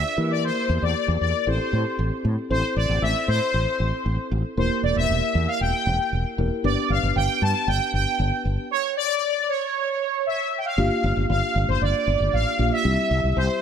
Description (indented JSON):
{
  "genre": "synth-pop",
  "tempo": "116 BPM",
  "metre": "4/4",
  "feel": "straight",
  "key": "unclear",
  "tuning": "A4 = 438 Hz",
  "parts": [
    { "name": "analog synth brass", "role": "melody", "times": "0.0-13.6 s", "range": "C5 to A5", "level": "-24 LUFS", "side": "equal", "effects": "chorus, tape echo" },
    { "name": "muted felt-like synth keys", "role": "accompaniment", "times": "0.0-13.6 s", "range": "G3 to C5", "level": "-28 LUFS", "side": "equal", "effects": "chorus" },
    { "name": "fretless electric bass", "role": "bass", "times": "0.0-13.5 s", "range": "E1 to E3", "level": "-23 LUFS", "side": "equal", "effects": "analog chorus" }
  ],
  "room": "light reverb",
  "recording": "none",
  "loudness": "-20 LUFS",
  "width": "side -8 dB against mid",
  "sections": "0.0-2.5 A section; 2.5-10.8 B section; 10.8-13.6 C section",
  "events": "none",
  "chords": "0.2 Edim; 1.5 Am7; 2.5 Am; 4.6 Edim; 6.6 G; 8.7 N.C.; 10.8 Gm7; 12.8 C"
}